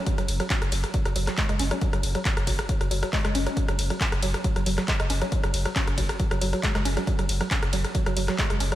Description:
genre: driving peak-time techno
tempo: 137 BPM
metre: 4/4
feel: straight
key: unclear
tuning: A4 = 442 Hz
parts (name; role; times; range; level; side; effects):
- woody wave-folded pluck; riff; 0.1-8.8 s; F#3 to C#4; -30 LUFS; right 1 dB; tube saturation, lush chorus, sidechain pumping, analog delay
- electronic kick drum; drums; 0.1-8.5 s; none; -26 LUFS; equal; none
- punchy analog drum machine; drums; 0.1-8.8 s; handclaps, hi-hat, ride cymbal, rim click; -28 LUFS; equal; none
- saturated sub bass; bass; 0.2-8.7 s; F#1; -29 LUFS; equal; tube saturation, sidechain pumping, low-pass filter
room: moderate lush hall reverb, RT60 2.1 s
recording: dreamy mix soaked in reverb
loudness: -23 LUFS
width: side -14 dB against mid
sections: 0.0-8.8 A section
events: none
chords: 0.0 F#5

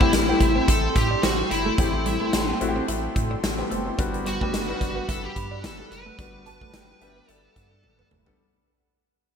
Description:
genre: 1980s-style pop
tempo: 109 BPM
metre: 4/4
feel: swing 55% on 16ths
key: unclear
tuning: A4 = 439 Hz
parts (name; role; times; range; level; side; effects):
- high-gain lead guitar; melody; 0.0-8.1 s; E4 to B4; -27 LUFS; left 2 dB; distortion
- clear baby grand piano; accompaniment; 0.0-8.4 s; G3 to C5; -30 LUFS; left 3 dB; none
- phased analog pad; sustained chords; 0.0-8.3 s; G3 to C6; -34 LUFS; right 1 dB; phaser, chorus
- twelve-string electric guitar; riff; 0.0-8.2 s; G3 to E4; -32 LUFS; right 5 dB; analog chorus, ping-pong delay
- huge arena drum kit; drums; 0.0-8.4 s; hi-hat, kick drum, snare drum, tambourine, toms; -25 LUFS; equal; gated reverb
- warm sub bass; bass; 0.1-8.3 s; F#1 to A2; -31 LUFS; equal; none
- shimmering bell with halo; second line; 6.5-8.3 s; D5 to A5; -52 LUFS; right 1 dB; none
room: moderate lush hall reverb, RT60 2.9 s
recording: bright 1980s-style digital production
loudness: -21 LUFS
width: side -7 dB against mid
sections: 0.0-8.4 A section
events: fade-out 0.0-8.4; drum fill 7.8-8.4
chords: 0.0 Am7

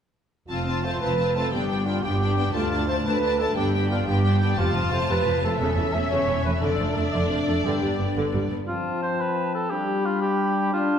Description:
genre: cinematic, heroic adventure film score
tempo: 118 BPM (dotted quarters)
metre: 6/8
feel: straight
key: F lydian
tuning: A4 = 440 Hz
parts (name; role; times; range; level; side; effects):
- rich symphonic violin section; melody; 0.5-8.5 s; D5 to A5; -32 LUFS; left 3 dB; none
- rich symphonic violin section; second line; 0.5-8.5 s; C#4 to F4; -32 LUFS; left 2 dB; none
- warm symphonic viola section; accompaniment; 0.5-8.6 s; C3 to C4; -31 LUFS; equal; none
- dark trumpet section; stabs; 0.5-8.2 s; F4 to E5; -27 LUFS; right 1 dB; none
- rich symphonic double bass section; bass; 0.5-8.6 s; E1 to D2; -28 LUFS; right 1 dB; none
- warm symphonic cello section; bass; 0.5-8.6 s; D2 to G2; -28 LUFS; right 1 dB; none
- warm French horn section; sustained chords; 0.8-11.0 s; F3 to D4; -30 LUFS; left 3 dB; none
- bright concert flute; second line; 8.7-11.0 s; A5 to B5; -33 LUFS; left 2 dB; none
- mellow oboe; second line; 8.7-11.0 s; F4 to C5; -26 LUFS; right 2 dB; none
- warm clarinet; second line; 8.7-11.0 s; C4 to D4; -32 LUFS; right 1 dB; none
room: wet recital hall reverb, RT60 1.6 s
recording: recorded in a church or concert hall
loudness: -21 LUFS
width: side -8 dB against mid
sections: 0.5-8.7 A section; 8.7-11.0 A section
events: none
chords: 0.5 F; 1.5 G; 2.5 Dm; 3.6 G; 4.6 F; 5.6 A/E; 6.6 Dm/F; 7.6 G; 8.7 F; 9.7 G

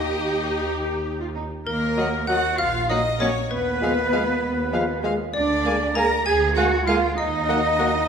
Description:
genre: cinematic, playful, whimsical film cue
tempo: 65 BPM (dotted quarters)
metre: 6/8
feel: straight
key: Eb minor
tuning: A4 = 439 Hz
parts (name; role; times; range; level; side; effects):
- clear chamber violin section; melody; 0.0-7.9 s; Eb5 to Gb5; -36 LUFS; left 3 dB; none
- xylophone with wooden mallets; melody; 0.0-8.1 s; Bb4 to Bb5; -30 LUFS; left 3 dB; none
- clear chamber violin section; second line; 0.0-8.1 s; G4 to Bb5; -31 LUFS; left 3 dB; none
- rich studio viola section; accompaniment; 0.0-7.9 s; F3 to Bb4; -30 LUFS; equal; none
- rich chamber double bass section; bass; 0.0-7.9 s; Bb1 to Eb2; -29 LUFS; right 2 dB; none
- warm chamber cello section; bass; 0.0-8.1 s; Bb3 to Bb4; -25 LUFS; right 3 dB; none
- silver concert flute; second line; 1.7-8.1 s; Bb4 to Bb5; -29 LUFS; left 3 dB; none
- warm oboe; second line; 1.7-8.1 s; Bb4 to Bb5; -27 LUFS; right 2 dB; none
- bright clarinet; second line; 2.0-7.9 s; Eb5 to Ab5; -32 LUFS; left 1 dB; none
- mellow bassoon; accompaniment; 2.0-7.9 s; Gb3 to Bb3; -31 LUFS; right 1 dB; none
- mellow French horn section; sustained chords; 2.0-7.9 s; Ab3 to Ab4; -31 LUFS; left 2 dB; none
room: moderate scoring stage reverb, RT60 1.8 s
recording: minimal, uncompressed stereo recording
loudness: -20 LUFS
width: side -7 dB against mid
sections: 0.0-1.7 A section; 1.7-8.1 B section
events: none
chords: 0.0 Eb; 1.7 Ebm; 3.5 Fm7b5/Eb; 5.3 Bb7/D; 7.2 Ebm

